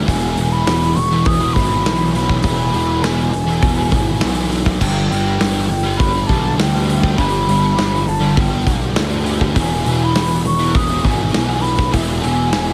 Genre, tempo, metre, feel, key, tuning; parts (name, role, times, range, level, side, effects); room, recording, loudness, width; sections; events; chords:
rock, shoegaze and dream pop; 101 BPM; 4/4; straight; A4 = 438 Hz
fuzz guitar; riff; 0.0-12.7 s; E2 to G3; -22 LUFS; equal; distortion, ensemble chorus
fuzz picked electric bass; bass; 0.0-12.7 s; E1 to D2; -22 LUFS; equal; overdrive
mellow hollow concert flute; melody; 0.1-12.7 s; E5 to D#6; -24 LUFS; equal; analog delay
big rock drum kit; drums; 0.1-12.7 s; crash cymbal, hi-hat, kick drum, snare drum; -22 LUFS; equal
light reverb, studio reverb; -16 LUFS; mono
0.0-12.7 A section
0.1 E; 4.8 G; 9.6 E